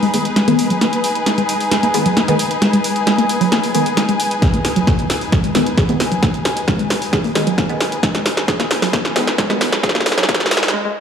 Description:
driving peak-time techno; 133 BPM; 4/4; straight; G# minor; A4 = 441 Hz
warbly dusty pluck; riff; 0.0-11.0 s; F#3 to G#4; -20 LUFS; equal; chorus, sidechain pumping, tape echo
punchy analog drum machine; drums; 0.0-10.8 s; hi-hat, snare drum; -19 LUFS; equal; sidechain pumping on hats, high-pass filter on hats, sidechain pumping on perc, high-pass filter on perc, high-pass filter on snare, high-pass filter on room
muted studio string section; texture; 0.0-10.7 s; D#4 to G#5; -21 LUFS; left 2 dB; sidechain pumping
filtered dub chord stab; stabs; 0.1-9.7 s; D#3 to B3; -20 LUFS; left 1 dB; phaser, analog chorus, sidechain pumping, ping-pong delay
electronic kick drum; drums; 4.4-10.4 s; -18 LUFS; equal
riser; sound effects; 5.7-10.7 s; -30 LUFS; right 1 dB
moderate plate reverb, RT60 1.4 s, small room ambience; played on a big sound system in a bare room, large studio reverb, high-pass filter; -14 LUFS; side -7 dB against mid
0.0-11.0 A section
build-up 0.0-11.0; drum fill 0.0-10.7; filter sweep on synth arpeggio sound 0.0-11.0; filter sweep 0.0-11.0; break 10.7
0.0 G#m

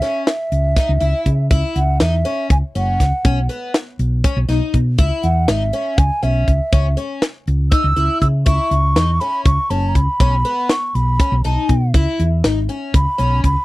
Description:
progressive instrumental, band music in an uneven meter; 241 BPM (eighths); 7/8; straight; C# minor; A4 = 440 Hz
mellow hollow silver concert flute; melody; 0.0-13.6 s; E5 to E6; -20 LUFS; right 1 dB
picked twelve-string acoustic guitar; arpeggios; 0.0-13.5 s; B3 to E4; -24 LUFS; left 4 dB
tight funk drum kit; drums; 0.0-13.6 s; hi-hat, kick drum, snare drum; -16 LUFS; equal
hollow-body short-scale fingered electric bass; bass; 0.5-13.5 s; F#1 to C#3; -16 LUFS; equal
little or no reverb; dry, close 1970s-style studio recording; -14 LUFS; side -18 dB against mid
0.0-13.6 A section
flute solo 0.0-13.6
0.0 C#m; 1.5 Esus2; 3.2 B; 5.0 C#m; 8.5 F#7(no3); 10.2 B7; 11.9 C#m

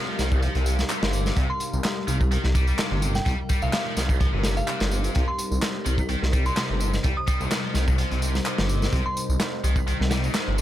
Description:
breakbeat, breaks; 127 BPM; 4/4; swing 54% on 16ths; C minor; A4 = 435 Hz
warbly tape-like pad; sustained chords; 0.0-10.6 s; C3 to F5; -32 LUFS; left 2 dB; chorus, built-in reverb, sidechain pumping
heavy high-gain guitar; riff; 0.0-10.6 s; Bb2 to G3; -31 LUFS; equal; distortion, tube saturation, tape echo
phased detuned saw bass; bass; 0.2-10.6 s; G1 to C2; -24 LUFS; equal; phaser, tube saturation
crunchy breakbeat drum kit; drums; 0.2-10.6 s; hi-hat, kick drum, snare drum; -26 LUFS; equal
electronic tambourine and handclaps; drums; 0.2-10.6 s; -34 LUFS; equal
glassy synth bell; melody; 1.5-9.2 s; F5 to Eb6; -33 LUFS; right 1 dB; chorus, tremolo, old record sound, tape echo
small room ambience; -22 LUFS; side -13 dB against mid
0.0-10.6 A section
0.0 Cm7

